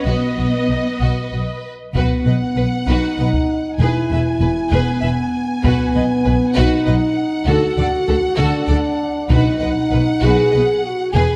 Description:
cinematic, epic orchestral film score; 65 BPM (dotted quarters); 6/8; straight; B mixolydian; A4 = 442 Hz
rich studio violin section; melody; 0.0-11.4 s; D#5 to G#5; -31 LUFS; equal
rich symphonic violin section; second line; 0.0-11.4 s; D#4 to E5; -29 LUFS; equal
rich symphonic viola section; accompaniment; 0.0-11.4 s; A4 to D#5; -29 LUFS; equal
rich symphonic cello section; bass; 0.0-11.2 s; E2 to B3; -26 LUFS; equal
warm symphonic double bass section; bass; 0.1-11.2 s; E1 to D2; -22 LUFS; equal
taiko ensemble; drums; 1.9-10.5 s; -24 LUFS; equal
mellow French horn section; sustained chords; 2.0-11.4 s; B3 to G#4; -21 LUFS; equal
timpani; percussion; 9.3-10.2 s; B2; -27 LUFS; equal
moderate scoring stage reverb, RT60 1.6 s; -17 LUFS; mono
0.0-2.0 A section; 2.0-11.4 B section
0.0 B; 3.8 E; 5.6 B; 7.5 D; 9.3 B

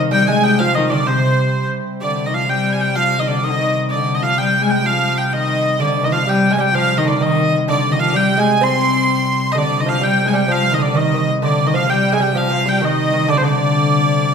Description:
medieval dance; 128 BPM (dotted quarters); 6/8; straight; C minor; A4 = 439 Hz
pipe organ, cornet; drone; 0.0-14.3 s; C3 to G3; -22 LUFS; left 1 dB
bright hurdy-gurdy; melody; 0.1-14.3 s; C5 to C6; -17 LUFS; right 1 dB
lute; second line; 0.1-1.7, 5.8-14.3 s; C3 to C4; -21 LUFS; right 4 dB
rich viola da gamba; second line; 0.1-14.3 s; C3 to C4; -20 LUFS; left 4 dB
wet recital hall reverb, RT60 1.4 s; minimal, uncompressed stereo recording; -14 LUFS; side -6 dB against mid
0.0-2.0 A section; 2.0-9.6 B section; 9.6-14.3 B section

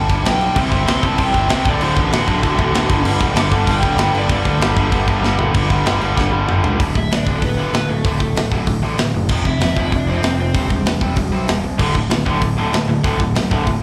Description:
punk rock; 192 BPM; 4/4; straight; A4 = 440 Hz
crunchy overdriven guitar; melody; 0.0-10.8 s; A3 to D6; -26 LUFS; equal; slapback echo
biting overdriven guitar; riff; 0.0-13.8 s; D2 to C4; -25 LUFS; equal; slapback echo
fuzz picked electric bass; bass; 0.0-13.8 s; D1 to D2; -22 LUFS; equal; overdrive
tight metal drum kit; drums; 0.1-13.7 s; crash cymbal, hi-hat, kick drum, snare drum, toms; -22 LUFS; equal
biting overdriven guitar; riff; 0.6-6.8, 11.8-13.8 s; D2 to C4; -22 LUFS; equal; slapback echo
little or no reverb; live gig heard through the venue's PA, club reverb; -17 LUFS; mono
0.0-5.5 A section; 5.5-6.8 B section; 6.8-13.8 C section
drum fill 5.2-5.5, 6.2-6.8
0.0 G; 0.6 C5; 1.6 D; 2.9 G5; 6.8 D5; 9.3 F5; 10.5 C/E; 11.8 D5

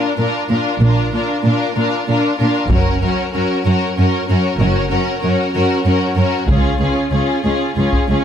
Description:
cinematic, epic orchestral film score; 63 BPM (dotted quarters); 6/8; straight; A4 = 439 Hz
rich symphonic violin section; melody; 0.0-8.2 s; Ab4 to Bb4; -23 LUFS; left 3 dB
rich symphonic violin section; second line; 0.0-8.2 s; F4 to Gb4; -23 LUFS; left 3 dB
rich studio viola section; accompaniment; 0.0-8.2 s; Db4 to D4; -20 LUFS; equal
rich symphonic cello section; bass; 0.2-8.2 s; Db2 to Bb2; -18 LUFS; right 1 dB
clear symphonic double bass section; bass; 0.8-6.8 s; Gb1 to Db2; -19 LUFS; right 2 dB
solo taiko drums; drums; 2.7-8.2 s; -19 LUFS; left 1 dB
light reverb; close, detailed microphones; -14 LUFS; side -9 dB against mid
0.0-8.2 A section
0.0 Bb; 2.7 Gb; 6.5 Db

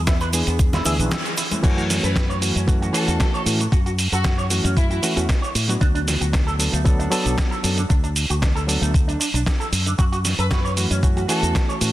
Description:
nu-disco, nu disco; 115 BPM; 4/4; swing 54% on 16ths; F# minor; A4 = 441 Hz
fingered electric bass with an envelope filter; bass; 0.0-11.9 s; B1 to A2; -23 LUFS; equal
electric guitar with an envelope filter; riff; 0.1-11.8 s; D3 to E5; -29 LUFS; right 2 dB; lush chorus, slapback echo
dusty soul sampler-style drum kit; drums; 0.1-11.9 s; crash cymbal, hi-hat, shaker, snare drum; -24 LUFS; right 1 dB
electronic kick drum; drums; 0.1-11.7 s; -19 LUFS; equal
cabasa and congas; percussion; 0.1-1.6 s; -32 LUFS; left 1 dB
barky reed electric piano; accompaniment; 0.3-11.9 s; E3 to A4; -26 LUFS; equal; overdrive, fast tremolo, sidechain pumping, slapback echo
rich studio violin section; melody; 2.0-5.0, 10.4-11.4 s; E4 to B4; -29 LUFS; left 1 dB; tape echo
light reverb; dense, heavily limited modern master; -18 LUFS; side -15 dB against mid
0.0-1.6 A section; 1.6-11.9 B section
filter sweep on reed electric piano 0.0-1.6; break 1.1-1.6; band accent 1.1; drop 1.6-11.9
0.0 E7; 1.6 F#m7; 5.8 D6; 10.0 F#m7

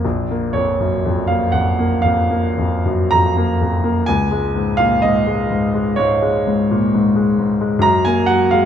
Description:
classical, romantic nocturne for solo piano; 53-67 BPM; 4/4; rubato; A4 = 440 Hz
clear concert grand piano; solo; 0.0-8.7 s; Bb1 to Bb5; -14 LUFS; equal
wet recital hall reverb, RT60 1.9 s; -14 LUFS; side -9 dB against mid
0.0-8.7 A section
0.0 Bb5; 4.1 Db5; 7.8 Gb

